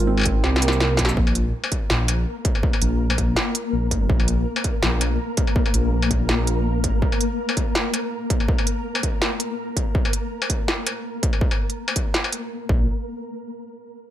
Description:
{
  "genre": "half-time drum and bass",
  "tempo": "164 BPM",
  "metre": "4/4",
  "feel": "swing 55% on 16ths, half-time",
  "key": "unclear",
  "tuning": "A4 = 440 Hz",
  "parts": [
    { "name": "dark analog pad", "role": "sustained chords", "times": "0.0-1.1 s", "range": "Ab3 to C5", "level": "-33 LUFS", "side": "left 3 dB", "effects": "none" },
    { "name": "felt-muted upright piano", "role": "arpeggios", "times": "0.0-1.2 s", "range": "Bb3 to Bb4", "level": "-25 LUFS", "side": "right 5 dB", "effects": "tape echo" },
    { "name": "dark detuned saw bass", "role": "bass", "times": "0.0-7.0, 12.7-12.9 s", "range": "Ab1 to C2", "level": "-21 LUFS", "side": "equal", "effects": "tube saturation" },
    { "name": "industrial drum kit", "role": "drums", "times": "0.2-12.4 s", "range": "hi-hat, shaker, snare drum, struck metal", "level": "-24 LUFS", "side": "equal", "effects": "none" },
    { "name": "electronic kick drum", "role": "drums", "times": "0.3-12.8 s", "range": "none", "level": "-22 LUFS", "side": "equal", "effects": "distortion" },
    { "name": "flickering grainy texture", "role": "texture", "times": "1.7-12.9 s", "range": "Bb3 to Bb4", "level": "-28 LUFS", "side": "left 2 dB", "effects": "built-in reverb" }
  ],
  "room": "little or no reverb",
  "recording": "none",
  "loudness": "-19 LUFS",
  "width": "side -12 dB against mid",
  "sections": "0.0-1.2 A section; 1.2-12.9 B section; 12.9-14.1 C section",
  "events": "drop 0.0-1.2; drum fill 0.4-1.2",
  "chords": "0.0 Ab; 1.2 N.C."
}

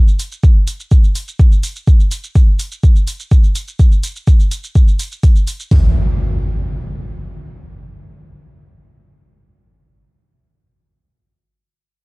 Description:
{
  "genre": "melodic techno",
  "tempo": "125 BPM",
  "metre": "4/4",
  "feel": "straight",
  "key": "none",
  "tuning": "none",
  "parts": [
    { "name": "electronic shaker and hi-hat", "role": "drums", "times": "0.1-5.7 s", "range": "none", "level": "-28 LUFS", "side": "right 1 dB", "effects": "none" },
    { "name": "deep house drum kit", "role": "drums", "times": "0.4-5.8 s", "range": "hi-hat, kick drum, toms", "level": "-9 LUFS", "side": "equal", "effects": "none" },
    { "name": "impact", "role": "sound effects", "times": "5.7-9.8 s", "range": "none", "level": "-19 LUFS", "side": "equal", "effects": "none" }
  ],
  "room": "little or no reverb",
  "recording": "dry, gritty hardware recording",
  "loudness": "-11 LUFS",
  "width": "side -28 dB against mid",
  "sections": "0.0-5.7 A section; 5.7-9.6 B section",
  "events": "none",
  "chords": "none"
}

